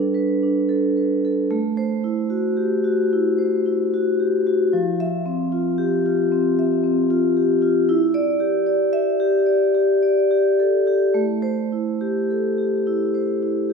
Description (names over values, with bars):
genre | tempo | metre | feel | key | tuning
classical, contemporary piece for solo vibraphone | 75 BPM | 4/4 | uneven beats, rubato | A minor | A4 = 439 Hz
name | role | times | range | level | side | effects
vibraphone with medium hard mallets | solo | 0.0-13.7 s | F3 to E5 | -18 LUFS | left 1 dB | none
room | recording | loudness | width
wet scoring stage reverb, RT60 2.0 s | recorded in a church or concert hall | -18 LUFS | side -5 dB against mid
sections
0.0-13.7 A section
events
none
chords
0.0 Gadd9; 1.5 Am6; 4.7 F5; 7.9 Em7; 11.2 Am7